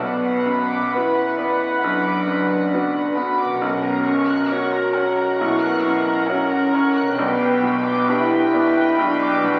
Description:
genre	cinematic, emotional film score for orchestra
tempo	67 BPM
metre	4/4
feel	rubato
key	B minor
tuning	A4 = 440 Hz
part	warm symphonic violin section	melody	0.0-9.6 s	F#5 to G5	-33 LUFS	equal	none
part	warm symphonic violin section	second line	0.0-9.6 s	D5 to F#6	-30 LUFS	equal	none
part	bright concert grand piano	accompaniment	0.0-9.6 s	B1 to B4	-26 LUFS	equal	none
part	warm symphonic viola section	accompaniment	0.0-9.6 s	A#4 to B4	-27 LUFS	equal	none
part	mellow French horn section	sustained chords	0.0-9.6 s	B3 to F#4	-23 LUFS	equal	none
part	concert harp	arpeggios	0.0-9.6 s	B2 to B4	-43 LUFS	equal	none
part	dark symphonic double bass section	bass	0.0-9.6 s	F#1 to B1	-42 LUFS	equal	none
part	rich symphonic cello section	bass	0.0-9.6 s	F#2 to B2	-33 LUFS	equal	none
room	wet scoring stage reverb, RT60 1.9 s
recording	very old 78 rpm record, vinyl crackle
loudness	-20 LUFS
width	mono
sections	0.0-9.6 A section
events	none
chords	0.0 Bm; 3.6 F#/B; 7.2 G/B

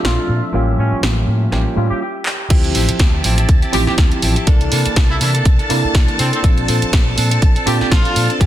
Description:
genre	filtered disco house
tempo	122 BPM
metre	4/4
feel	swing 56% on 16ths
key	D minor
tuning	A4 = 440 Hz
part	bright horn section	melody	0.0-8.3 s	C4 to G4	-24 LUFS	equal	vintage 12-bit sampler grit, sidechain pumping, low-pass filter, ping-pong delay
part	overdriven reed electric piano	accompaniment	0.0-8.5 s	F3 to A4	-23 LUFS	right 1 dB	phaser, vintage 12-bit sampler grit, sidechain pumping, low-pass filter
part	string machine, full ensemble	sustained chords	0.0-8.5 s	E5 to A5	-26 LUFS	equal	ensemble chorus, sidechain pumping, low-pass filter
part	direct-recorded clean electric guitar	riff	0.0-8.5 s	E3 to A4	-24 LUFS	right 2 dB	sidechain pumping, low-pass filter
part	overdriven fingered electric bass	bass	0.0-8.5 s	A1 to C3	-18 LUFS	equal	sidechain pumping, low-pass filter
part	punchy analog drum machine	drums	0.0-8.5 s	crash cymbal, handclaps, hi-hat, snare drum	-21 LUFS	right 1 dB	overdrive, sidechain pumping on hats, sidechain pumping on cymbals
part	electronic kick drum	drums	2.5-8.5 s	none	-13 LUFS	equal	none
room	light reverb, digital ambience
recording	dense, heavily limited modern master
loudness	-13 LUFS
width	side -12 dB against mid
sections	0.0-2.5 A section; 2.5-8.5 B section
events	filter sweep 0.0-2.5; break 2.0-2.5; drum fill 2.3; drop 2.5-8.5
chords	0.0 Bbmaj9; 0.5 A7b9b13; 2.5 Dm11; 4.5 C13; 6.4 Bbmaj9

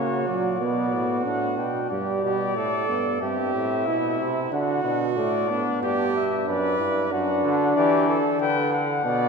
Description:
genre	classical, imitative canzona for brass ensemble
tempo	92 BPM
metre	4/4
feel	straight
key	G major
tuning	A4 = 435 Hz
part	dark trumpet	melody	0.0-9.3 s	C#5 to G5	-27 LUFS	left 6 dB	none
part	clear flugelhorn	second line	0.0-9.3 s	D4 to D5	-27 LUFS	right 5 dB	none
part	mellow trombone	accompaniment	0.0-9.3 s	F#3 to E4	-26 LUFS	equal	none
part	bright bass trombone	bass	0.0-9.3 s	F#2 to E3	-28 LUFS	right 2 dB	none
room	wet church reverb, RT60 3.3 s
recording	minimal, uncompressed stereo recording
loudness	-21 LUFS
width	side -5 dB against mid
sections	0.0-1.9 A section; 1.9-9.3 B section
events	none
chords	0.0 F#; 0.6 Bm; 1.9 G; 3.2 C/G; 4.5 D; 5.8 G; 7.1 D/F#; 8.4 G/D

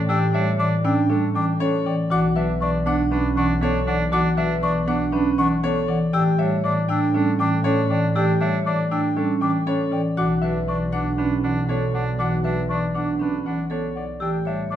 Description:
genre	classical, minimalist pattern music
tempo	119 BPM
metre	4/4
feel	straight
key	B minor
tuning	A4 = 440 Hz
part	clear grand piano	melody	0.0-14.8 s	A4 to G5	-28 LUFS	left 8 dB	none
part	folk marimba with medium mallets	accompaniment	0.0-14.8 s	E3 to C#4	-24 LUFS	left 1 dB	none
part	rich symphonic double bass section	bass	0.0-14.8 s	B1 to A2	-27 LUFS	right 2 dB	none
part	warm oboe	second line	0.1-14.8 s	D4	-31 LUFS	right 3 dB	none
part	mellow hollow concert flute	arpeggios	0.1-14.8 s	F#5 to E6	-29 LUFS	left 3 dB	none
part	vibraphone with medium mallets	arpeggios	0.1-14.8 s	C#4 to C#5	-25 LUFS	right 5 dB	none
room	wet recital hall reverb, RT60 1.5 s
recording	dark, warm production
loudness	-19 LUFS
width	side -10 dB against mid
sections	0.0-14.8 A section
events	none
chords	0.0 A7sus4; 2.1 Bm9; 6.1 A7sus4; 10.2 Bm9; 14.2 A7sus4

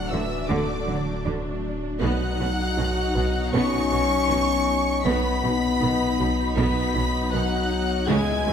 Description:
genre	cinematic, hybrid orchestral and electronic film score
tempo	79 BPM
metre	4/4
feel	straight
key	unclear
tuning	A4 = 441 Hz
part	warm symphonic violin section	melody	0.0-8.5 s	D6 to C#7	-32 LUFS	left 1 dB	none
part	rich symphonic violin section	second line	0.0-8.5 s	D5 to C#6	-30 LUFS	left 1 dB	none
part	rich symphonic viola section	accompaniment	0.0-8.5 s	D3 to E4	-29 LUFS	left 1 dB	none
part	mellow French horn section	sustained chords	0.0-8.5 s	D3 to C#4	-26 LUFS	left 4 dB	none
part	warbly tape-like pad	sustained chords	0.0-8.5 s	C#3 to D#5	-32 LUFS	left 1 dB	chorus, built-in reverb
part	saturated sub bass	bass	0.0-8.5 s	D1 to C#2	-30 LUFS	equal	none
part	soft round pluck	arpeggios	0.1-8.5 s	C#3 to B4	-36 LUFS	right 3 dB	none
part	rich chamber double bass section	bass	0.1-8.5 s	B1 to D2	-31 LUFS	right 3 dB	none
part	rich symphonic cello section	bass	0.1-8.5 s	B2 to D3	-31 LUFS	right 2 dB	none
room	wet concert hall reverb, RT60 1.9 s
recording	none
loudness	-21 LUFS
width	side -8 dB against mid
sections	0.0-8.5 A section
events	none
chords	0.0 D; 2.0 B

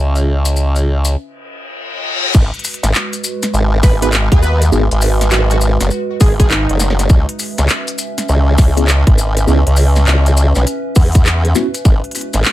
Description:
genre	glitch hop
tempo	101 BPM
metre	4/4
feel	swing 64% on 16ths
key	G# minor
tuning	A4 = 440 Hz
part	warbly tape-like pad	sustained chords	0.0-12.5 s	G#3 to E5	-24 LUFS	right 3 dB	chorus, built-in reverb, vintage 12-bit sampler grit, sidechain pumping
part	formant-sweep wobble bass	bass	0.0-12.4 s	F#1 to E2	-12 LUFS	equal	chorus, tube saturation
part	maracas	percussion	0.2-12.5 s	none	-24 LUFS	left 4 dB	none
part	reverse cymbal	sound effects	1.5-2.3 s	none	-19 LUFS	left 5 dB	none
part	drum and bass drum kit	drums	2.3-12.5 s	crash cymbal, handclaps, hi-hat, snare drum	-19 LUFS	equal	none
part	electronic kick drum	drums	2.3-12.0 s	none	-9 LUFS	equal	none
part	plucky unison lead	melody	3.8-7.1 s	D#4 to B4	-22 LUFS	right 2 dB	ping-pong delay
part	mellow tine electric piano	stabs	4.0-4.8, 8.8-11.7 s	B3 to G#4	-18 LUFS	equal	medium stereo tremolo, vintage 12-bit sampler grit, sidechain pumping, ping-pong delay
room	little or no reverb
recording	none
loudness	-11 LUFS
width	side -15 dB against mid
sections	0.0-2.3 A section; 2.3-12.5 B section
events	break 1.2-2.3; reverse cymbal 1.5-2.3; drop 2.3-12.5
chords	0.0 C#m7; 2.3 G#m7; 7.1 C#m7; 11.9 G#m7

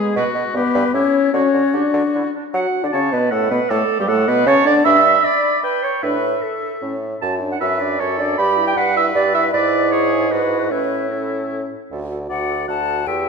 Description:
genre	quick classical-period movement for wind quintet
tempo	154 BPM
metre	3/4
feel	straight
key	D major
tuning	A4 = 440 Hz
part	silver concert flute	melody	0.0-13.3 s	G4 to B5	-25 LUFS	left 9 dB	none
part	clear oboe	second line	0.0-13.3 s	E4 to B5	-25 LUFS	left 5 dB	none
part	warm French horn	accompaniment	0.0-13.3 s	G3 to G4	-21 LUFS	left 2 dB	none
part	warm clarinet	accompaniment	0.2-13.3 s	D4 to B5	-19 LUFS	right 7 dB	none
part	clear bassoon	bass	0.2-13.3 s	D2 to F#3	-23 LUFS	right 2 dB	none
room	wet scoring stage reverb, RT60 1.8 s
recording	dark, warm production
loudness	-15 LUFS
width	side -5 dB against mid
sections	0.0-2.5 A section; 2.5-11.9 B section; 11.9-13.3 A section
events	none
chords	0.2 B5; 0.6 G; 0.9 A7; 1.3 D; 4.9 Em7/G; 6.0 Asus4; 6.8 A; 7.2 D/F#; 8.4 Em/G; 9.5 E7/G#; 10.7 A; 11.9 D

